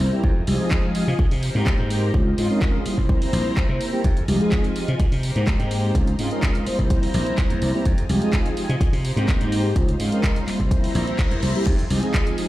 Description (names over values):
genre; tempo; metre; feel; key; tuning
filtered disco house; 126 BPM; 4/4; straight; F minor; A4 = 441 Hz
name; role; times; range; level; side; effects
mellow synth brass; accompaniment; 0.0-12.5 s; F3 to C5; -24 LUFS; equal; chorus, phaser, sidechain pumping, low-pass filter
string machine, full ensemble; sustained chords; 0.0-12.5 s; E4 to C6; -30 LUFS; left 1 dB; ensemble chorus, sidechain pumping, low-pass filter
slap bass; bass; 0.0-12.0 s; Bb1 to C3; -23 LUFS; equal; sidechain pumping, low-pass filter
punchy analog drum machine; drums; 0.0-12.5 s; crash cymbal, handclaps, hi-hat; -32 LUFS; equal; sidechain pumping on hats, sidechain pumping on cymbals
electronic kick drum; drums; 0.2-12.2 s; none; -20 LUFS; equal; none
reverse cymbal; sound effects; 10.9-11.7 s; none; -36 LUFS; left 6 dB; none
room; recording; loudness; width
little or no reverb; played on a big sound system in a bare room, stone room reverb; -18 LUFS; side -16 dB against mid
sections
0.0-12.5 A section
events
reverse cymbal 10.9-11.7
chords
0.2 Fm7; 1.2 Abmaj9; 2.1 Dbmaj9; 2.9 C7; 4.0 Fm7; 5.0 Abmaj9; 5.9 Dbmaj9; 6.7 C7; 7.9 Fm7; 8.8 Abmaj9; 9.8 Dbmaj9; 10.5 C7; 11.7 Fm7